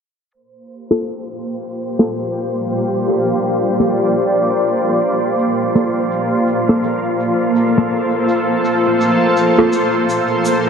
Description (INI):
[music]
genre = ambient dub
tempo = 83 BPM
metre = 4/4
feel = swing 60% on 16ths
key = G minor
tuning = A4 = 438 Hz
[part]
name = granular cloud pad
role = sustained chords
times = 1.3-10.7 s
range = Bb3 to D5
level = -15 LUFS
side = equal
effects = built-in reverb, vintage 12-bit sampler grit
[part]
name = shaker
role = drums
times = 0.3-10.6 s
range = none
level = -34 LUFS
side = equal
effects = low-pass filter on perc, low-pass filter on room, dub echo
[part]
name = wind-like tuned noise texture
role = texture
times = 0.7-10.7 s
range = C5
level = -24 LUFS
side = left 1 dB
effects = built-in reverb
[part]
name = filtered dub chord stab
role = stabs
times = 0.9-9.8 s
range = Bb3 to A4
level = -18 LUFS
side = equal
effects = phaser, dub echo
[sound]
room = moderate concert hall reverb, RT60 2.1 s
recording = dark, warm production, low-pass filter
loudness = -14 LUFS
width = side -6 dB against mid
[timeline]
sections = 0.3-10.7 A section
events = filter sweep on synth stab 0.3-10.7; filter sweep 0.3-10.7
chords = 0.3 Gm7